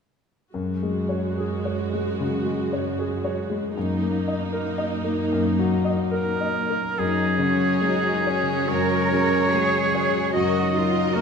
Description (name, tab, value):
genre	cinematic, emotional film score for orchestra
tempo	73 BPM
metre	4/4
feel	uneven beats, rubato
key	F# major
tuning	A4 = 440 Hz
part	clear grand piano	accompaniment	0.5-11.2 s	F#2 to D#5	-25 LUFS	left 2 dB	none
part	warm symphonic viola section	accompaniment	0.5-11.2 s	F#3 to F#4	-29 LUFS	right 3 dB	none
part	rich symphonic cello section	bass	0.6-11.2 s	F#2 to A#4	-29 LUFS	right 4 dB	none
part	clear oboe	second line	6.1-11.2 s	G#4 to D#5	-24 LUFS	right 2 dB	none
part	concert harp	arpeggios	7.0-11.2 s	F#2 to D#4	-29 LUFS	left 8 dB	none
part	warm symphonic violin section	second line	7.4-11.2 s	G#4 to D#5	-29 LUFS	left 6 dB	none
room	wet scoring stage reverb, RT60 1.5 s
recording	minimal, uncompressed stereo recording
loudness	-21 LUFS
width	side -6 dB against mid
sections	0.6-7.0 A section; 7.0-11.2 B section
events	none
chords	0.6 F#sus2; 3.8 D#m/F#; 7.0 F#sus2; 10.4 D#m/F#